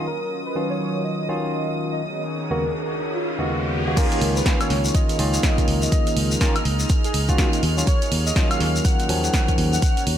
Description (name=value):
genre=deep house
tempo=123 BPM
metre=4/4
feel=swing 61% on 16ths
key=Db major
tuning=A4 = 444 Hz
part: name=warm analog pad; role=sustained chords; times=0.0-10.2 s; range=Eb3 to Eb5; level=-30 LUFS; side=right 1 dB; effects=chorus, sidechain pumping
part: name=barky tine electric piano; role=stabs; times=0.0-9.8 s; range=Eb2 to Gb4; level=-26 LUFS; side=equal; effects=vintage 12-bit sampler grit, sidechain pumping, ping-pong delay
part: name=warm chamber violin section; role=texture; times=0.0-10.2 s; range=Eb6 to F6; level=-34 LUFS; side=right 1 dB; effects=none
part: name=warm velvety synth lead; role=melody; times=0.1-10.0 s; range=Eb4 to Gb5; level=-29 LUFS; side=equal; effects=chorus, analog delay
part: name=riser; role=sound effects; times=1.7-4.0 s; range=none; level=-32 LUFS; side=equal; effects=none
part: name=electronic kick drum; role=drums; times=4.0-9.9 s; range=none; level=-20 LUFS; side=equal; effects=none
part: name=punchy analog drum machine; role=drums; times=4.0-10.2 s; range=crash cymbal, hi-hat, snare drum, woodblock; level=-27 LUFS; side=right 1 dB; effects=none
part: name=shekere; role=percussion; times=4.0-10.1 s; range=none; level=-31 LUFS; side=left 3 dB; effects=none
part: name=fingered electric bass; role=bass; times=4.2-10.2 s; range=Db2 to Eb2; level=-22 LUFS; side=equal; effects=sidechain pumping
room=light reverb, digital ambience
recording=none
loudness=-19 LUFS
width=side -10 dB against mid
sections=0.0-4.0 A section; 4.0-10.2 B section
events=riser 1.7-4.0; drop 4.0-10.2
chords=0.0 Ebm9; 2.0 Abm11/Eb; 4.0 Db69; 7.6 Ebm9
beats=| 0.07 0.56 1.04 1.53 | 2.02 2.51 3.00 3.48 | 3.97 4.46 4.95 5.43 | 5.92 6.41 6.90 7.38 | 7.87 8.36 8.85 9.34 | 9.82